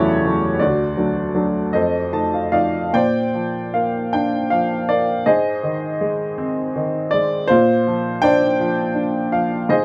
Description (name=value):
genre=classical, lyrical solo piano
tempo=49-56 BPM (dotted quarters)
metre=6/8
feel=rubato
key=Bb mixolydian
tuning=A4 = 440 Hz
part: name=clear upright piano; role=solo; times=0.0-9.8 s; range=D2 to A5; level=-19 LUFS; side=equal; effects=none
room=light reverb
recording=none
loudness=-19 LUFS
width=mono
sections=0.0-2.9 A section; 2.9-9.8 B section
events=upright piano fill 1.7-2.9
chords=0.0 A6; 0.6 D; 1.7 F7; 2.9 Bbadd9; 5.3 Ab; 7.5 Bbadd9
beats=| 0.61 1.74 | 2.94 4.14 | 5.27 6.39 | 7.51 8.59 | 9.70